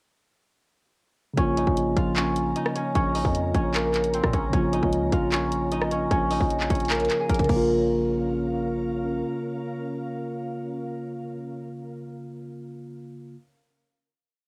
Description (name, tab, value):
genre	hip hop, trap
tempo	152 BPM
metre	4/4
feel	half-time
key	Bb minor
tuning	A4 = 441 Hz
part	mellow tine electric piano	accompaniment	1.3-13.4 s	Db3 to F4	-30 LUFS	equal	low-pass filter, cassette tape
part	guzheng	melody	1.4-10.7 s	Bb3 to Ab5	-29 LUFS	equal	low-pass filter
part	glassy FM pad	sustained chords	1.9-11.2 s	Db4 to Bb5	-39 LUFS	equal	ensemble chorus, built-in reverb, cassette tape
part	distorted 808-style bass	bass	1.4-9.2 s	Bb1 to Bb2	-33 LUFS	equal	distortion
part	trap drum kit	drums	1.4-7.6 s	crash cymbal, handclaps, hi-hat, kick drum, rim click	-29 LUFS	equal	cassette tape
room	digital ambience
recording	home recording on cassette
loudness	-25 LUFS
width	mono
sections	1.4-7.7 hook; 7.7-10.8 final hit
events	none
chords	1.4 Bbm